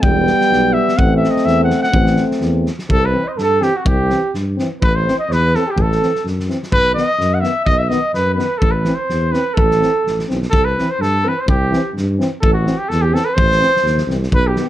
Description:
balkan folk, Balkan brass band; 126 BPM; 2/4; swing 54% on 16ths; A dorian sharp4; A4 = 440 Hz
warm trumpet; melody; 0.0-14.7 s; F#4 to G5; -18 LUFS; equal; plate reverb
mellow French horn; accompaniment; 0.0-14.7 s; B3 to C4; -21 LUFS; left 3 dB
warm euphonium; accompaniment; 0.0-14.7 s; D#3 to A3; -23 LUFS; right 5 dB
mellow tuba; bass; 0.0-14.6 s; E1 to G2; -19 LUFS; equal
loose indie drum kit; percussion; 0.0-14.6 s; kick drum, snare drum; -20 LUFS; equal
mellow flugelhorn; second line; 2.9-14.7 s; F#4 to F#5; -22 LUFS; right 3 dB
light reverb; dark, warm production; -13 LUFS; side -13 dB against mid
0.0-2.9 A section; 2.9-10.5 B section; 10.5-14.7 B section
trumpet solo 0.0-2.9
0.0 Em; 1.0 Am; 2.9 C; 4.8 Am; 6.7 B; 8.6 Am; 10.5 C; 12.4 Am

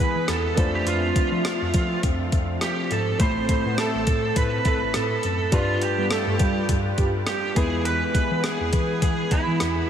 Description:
1980s-style pop; 103 BPM; 4/4; swing 55% on 16ths; A4 = 440 Hz
bluesy overdriven lead guitar; melody; 0.0-9.9 s; E4 to C5; -26 LUFS; right 2 dB; distortion, diffuse ambient delay
dark baby grand piano; accompaniment; 0.0-9.9 s; G2 to B5; -29 LUFS; left 2 dB
sweeping resonant pad; sustained chords; 0.0-9.9 s; E3 to E5; -31 LUFS; equal; chorus
mellow tine electric piano; bass; 0.2-9.8 s; A1 to G3; -28 LUFS; equal; medium stereo tremolo
clean 12-bit digital drum machine; drums; 0.3-9.8 s; hi-hat, kick drum, rim click; -25 LUFS; equal; overdrive
analog synth brass; stabs; 3.5-7.1 s; G3 to C5; -33 LUFS; right 2 dB; chorus, diffuse ambient delay
moderate huge ambient reverb, RT60 8.5 s; dreamy mix soaked in reverb; -20 LUFS; side -9 dB against mid
0.0-9.9 A section
0.0 E; 0.6 Dm7/F; 3.2 Amadd9; 5.5 G7; 7.6 E

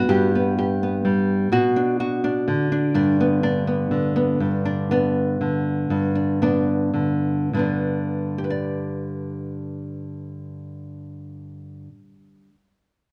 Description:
folk, solo fingerstyle acoustic guitar; 100-128 BPM; 3/4; rubato; G major; A4 = 440 Hz
nylon-string guitar; solo; 0.0-12.5 s; G2 to D5; -23 LUFS; equal
moderate large studio reverb, RT60 1.2 s; -22 LUFS; mono
0.0-4.4 A section; 4.4-7.5 B section; 7.5-11.0 C section
slowing down 4.4-7.5
0.0 Gmaj7; 1.5 Bm; 2.9 G

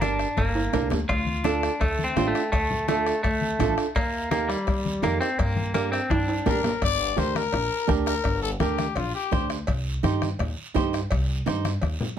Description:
latin, cumbia; 168 BPM; 4/4; straight; G minor; A4 = 438 Hz
clean electric guitar; melody; 0.0-6.6 s; G3 to F4; -27 LUFS; equal; spring reverb, slapback echo
flamenco guitar; accompaniment; 0.0-12.2 s; D4 to C5; -26 LUFS; right 8 dB
upright bass; bass; 0.0-12.0 s; G1 to G2; -29 LUFS; equal
bombo; percussion; 0.0-12.0 s; -30 LUFS; left 2 dB
congas; percussion; 0.0-12.1 s; -32 LUFS; left 4 dB
cowbell and timbales; percussion; 0.0-12.0 s; -33 LUFS; right 2 dB
guiro; percussion; 0.0-12.2 s; -41 LUFS; right 5 dB
growling trumpet; second line; 6.5-9.5 s; F4 to D5; -27 LUFS; left 7 dB
light reverb; -22 LUFS; side -9 dB against mid
0.0-6.8 A section; 6.8-12.2 B section
drum fill 0.4-1.1, 6.1-6.8, 11.5-12.2; trumpet solo 6.8-12.2
0.0 Gm; 1.1 Dm; 4.0 Eb; 5.4 Gm; 9.7 Cm

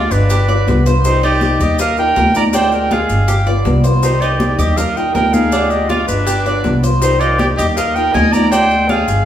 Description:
latin, Cuban son and guajira; 161 BPM; 4/4; straight; C minor; A4 = 440 Hz
clear clarinet; melody; 0.0-9.2 s; B4 to Bb5; -17 LUFS; equal
brilliant trumpet; second line; 0.0-9.2 s; D4 to Eb5; -23 LUFS; right 2 dB
fingerpicked swing-style acoustic guitar; accompaniment; 0.0-9.2 s; C3 to G4; -23 LUFS; left 3 dB
Cuban tres; arpeggios; 0.0-9.2 s; D4 to Eb5; -21 LUFS; right 1 dB
upright bass; bass; 0.0-9.2 s; G1 to Eb2; -16 LUFS; equal
congas; percussion; 0.1-9.2 s; -22 LUFS; equal
maracas; percussion; 0.1-9.2 s; -30 LUFS; left 4 dB
bongos; percussion; 0.3-9.1 s; -26 LUFS; left 4 dB
wet large studio reverb, RT60 1.3 s; band playing live in one room; -12 LUFS; side -10 dB against mid
0.0-9.2 A section
drum fill 9.1
0.3 G7; 1.0 Cm; 1.8 Ebadd9; 2.5 Dm7b5; 3.3 G7; 4.0 Cm; 4.8 Ebadd9; 5.5 Dm7b5; 6.3 G7; 7.0 Cm; 7.8 Ebadd9; 8.5 Dm7b5

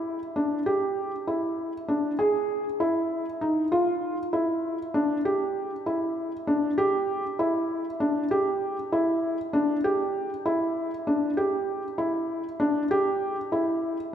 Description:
contemporary instrumental, contemporary; 196 BPM (eighths); 5/8; straight; A4 = 440 Hz
felt-muted upright piano; solo; 0.0-14.0 s; D4 to G#4; -24 LUFS; equal
wet church reverb, RT60 3.1 s; recorded in a church or concert hall; -24 LUFS; side -9 dB against mid
0.0-5.3 A section; 5.3-14.1 B section

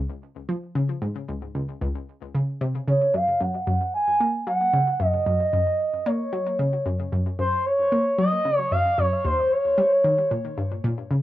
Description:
ambient; 113 BPM; 4/4; straight; Gb lydian; A4 = 439 Hz
analog pluck; riff; 0.0-11.2 s; Db2 to Bb3; -25 LUFS; equal; chorus, ping-pong delay
expressive synth lead; melody; 2.9-10.3 s; C5 to Ab5; -21 LUFS; right 1 dB; chorus, cassette tape, ping-pong delay
wet booth ambience, RT60 0.3 s; home recording on cassette; -21 LUFS; side -14 dB against mid
0.0-11.2 A section
0.0 N.C.; 2.9 Gb; 9.2 Eb7

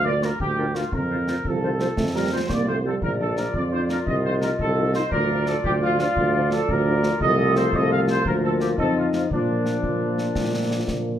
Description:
military-style march for wind band; 115 BPM (dotted quarters); 6/8; straight; Bb major; A4 = 440 Hz
warm trumpet section; melody; 0.0-10.8 s; D4 to F5; -26 LUFS; right 1 dB
clear tuba; bass; 0.0-11.2 s; Bb1 to Bb2; -24 LUFS; right 2 dB
warm woodwind section; second line; 0.1-11.2 s; F4 to Eb5; -28 LUFS; left 1 dB
mellow French horn section; accompaniment; 0.1-11.2 s; F3 to F4; -28 LUFS; left 5 dB
concert snare drum and concert bass drum; drums; 0.2-11.0 s; -30 LUFS; left 1 dB
mellow euphonium; second line; 1.5-3.0 s; Eb3 to Bb3; -27 LUFS; right 4 dB
moderate large studio reverb, RT60 0.8 s; -20 LUFS; side -10 dB against mid
0.0-11.2 A section
0.0 Bb/D; 0.9 F; 3.0 Bb; 4.1 F7/C; 5.1 Bb/D; 7.2 F7/C; 8.3 Bb/D; 8.8 F5; 9.3 Bb

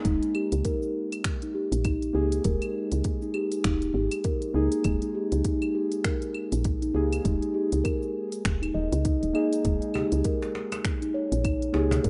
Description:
organic downtempo; 100 BPM; 4/4; swing 59% on 16ths; Eb major; A4 = 440 Hz
muted felt-like synth keys; accompaniment; 0.0-12.1 s; Ab3 to Ab4; -34 LUFS; equal; chorus, sidechain pumping, tape echo
afro-pop drum kit; drums; 0.0-12.1 s; claves, finger snaps, hi-hat, shaker; -38 LUFS; equal; small room reverb
steel tongue drum; arpeggios; 0.1-12.1 s; Eb4 to Eb5; -32 LUFS; equal; tape echo
woody FM bass; bass; 0.1-12.1 s; Eb1 to Db2; -30 LUFS; equal; sidechain pumping
electronic kick drum; drums; 0.1-12.1 s; -31 LUFS; equal; small room reverb
cajon; percussion; 10.0-12.0 s; -37 LUFS; equal
moderate plate reverb, RT60 1.3 s, digital ambience; rough home demo mix, nothing above 10.7 kHz; -27 LUFS; mono
0.0-12.1 A section
0.0 Ebsus4

